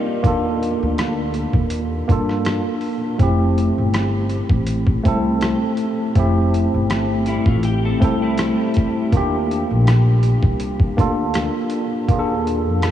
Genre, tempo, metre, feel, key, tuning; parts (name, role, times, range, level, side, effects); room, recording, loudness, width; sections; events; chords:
lo-fi hip hop; 81 BPM; 4/4; swing 55% on 16ths; A4 = 442 Hz
clean electric guitar; second line; 0.0-0.2, 7.3-9.1 s; G3 to A4; -30 LUFS; left 2 dB; analog chorus, analog delay
mellow tine electric piano; accompaniment; 0.0-12.9 s; A3 to D5; -20 LUFS; equal; medium stereo tremolo, cassette tape
upright bass; bass; 0.2-12.9 s; F1 to G2; -20 LUFS; equal
boom bap sampler-style drum kit; drums; 0.2-12.9 s; hi-hat, kick drum, rim click; -21 LUFS; equal; overdrive, vintage 12-bit sampler grit
moderate huge ambient reverb, RT60 8.4 s; dreamy mix soaked in reverb, cassette tape, small room ambience; -16 LUFS; side -11 dB against mid
0.0-12.9 A section
0.0 Ebmaj9; 3.2 Fmaj9; 9.1 Ebmaj9